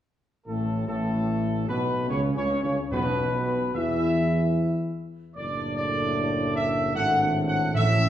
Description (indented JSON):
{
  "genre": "classical, ceremonial fanfare",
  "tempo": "74 BPM",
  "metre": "3/4",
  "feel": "straight",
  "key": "A major",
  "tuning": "A4 = 443 Hz",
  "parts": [
    { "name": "dark trumpet section", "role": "melody", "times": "0.5-8.1 s", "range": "A4 to F#5", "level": "-27 LUFS", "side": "equal", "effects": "none" },
    { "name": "clear trombone section", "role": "sustained chords", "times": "0.5-8.1 s", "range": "A2 to A3", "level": "-32 LUFS", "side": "right 1 dB", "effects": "none" },
    { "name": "dark French horn section", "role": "sustained chords", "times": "0.5-8.1 s", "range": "A3 to A4", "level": "-30 LUFS", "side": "left 2 dB", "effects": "none" },
    { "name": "mellow tuba", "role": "bass", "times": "0.5-8.1 s", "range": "F#1 to E2", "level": "-29 LUFS", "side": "right 2 dB", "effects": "none" },
    { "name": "timpani", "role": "percussion", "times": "2.9-8.1 s", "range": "E2 to A2", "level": "-26 LUFS", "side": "right 1 dB", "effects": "none" }
  ],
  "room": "wet recital hall reverb, RT60 1.6 s",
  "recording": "heard from further back in the room",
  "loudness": "-23 LUFS",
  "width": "side -11 dB against mid",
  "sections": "0.5-8.1 A section",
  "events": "none",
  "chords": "0.5 A; 2.9 E5/B; 5.4 D/F#",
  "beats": "| 0.47 1.28 2.10 | 2.91 3.74 4.55 | 5.36 6.16 6.95 | 7.74"
}